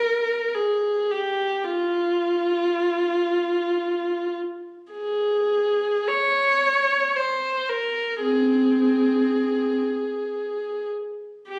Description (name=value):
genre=classical, free, expressive piece for unaccompanied viola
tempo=free time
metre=none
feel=none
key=F minor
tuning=A4 = 440 Hz
part: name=rich viola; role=solo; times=0.0-11.6 s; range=C4 to Db5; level=-23 LUFS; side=equal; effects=none
room=moderate recital hall reverb, RT60 1.3 s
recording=recorded on a phone in the room, studio ambience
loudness=-23 LUFS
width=mono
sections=0.0-11.6 A section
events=none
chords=none